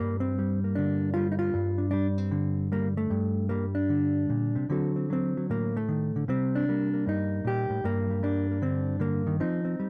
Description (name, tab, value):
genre	solo jazz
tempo	153 BPM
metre	4/4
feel	swing 65% on 8ths, rubato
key	G minor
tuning	A4 = 438 Hz
part	hollow-body jazz guitar	solo	0.0-9.9 s	G2 to A4	-28 LUFS	equal	none
room	little or no reverb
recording	close, detailed microphones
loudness	-28 LUFS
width	mono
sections	0.0-9.9 A section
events	none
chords	0.0 Gm7; 4.7 D7; 6.3 Cm7; 7.8 Gm